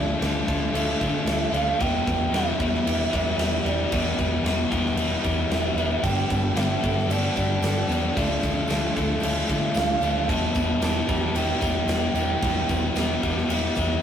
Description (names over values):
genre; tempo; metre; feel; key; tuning
rock, shoegaze and dream pop; 113 BPM; 4/4; straight; unclear; A4 = 438 Hz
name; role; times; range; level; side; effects
hollow clarinet-like synth lead; melody; 0.0-14.0 s; D5 to A5; -30 LUFS; right 5 dB; chorus
picked twelve-string acoustic guitar; arpeggios; 0.0-14.0 s; F3 to A4; -34 LUFS; right 4 dB; none
overdriven electric guitar; riff; 0.0-14.0 s; E2 to G4; -25 LUFS; left 4 dB; none
twelve-string electric guitar; riff; 0.0-14.0 s; D3 to B4; -36 LUFS; right 4 dB; none
vintage muted picked electric bass; bass; 0.0-14.0 s; E1 to D3; -28 LUFS; equal; none
huge arena drum kit; drums; 0.2-13.9 s; crash cymbal, kick drum, snare drum; -28 LUFS; equal; none
tambourine; percussion; 6.0-13.9 s; none; -46 LUFS; right 7 dB; none
room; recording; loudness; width
moderate stone room reverb, RT60 1.3 s; rough rehearsal-room recording; -21 LUFS; side -9 dB against mid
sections
0.0-14.0 A section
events
none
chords
0.0 Dm; 1.8 Em7; 6.0 Gadd9; 8.2 Dm; 10.3 Em7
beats
0.21 0.74 1.27 | 1.80 2.33 2.86 3.39 | 3.92 4.45 4.98 5.51 | 6.04 6.57 7.10 7.63 | 8.16 8.69 9.22 9.76 | 10.29 10.82 11.35 11.88 | 12.42 12.95 13.48 14.02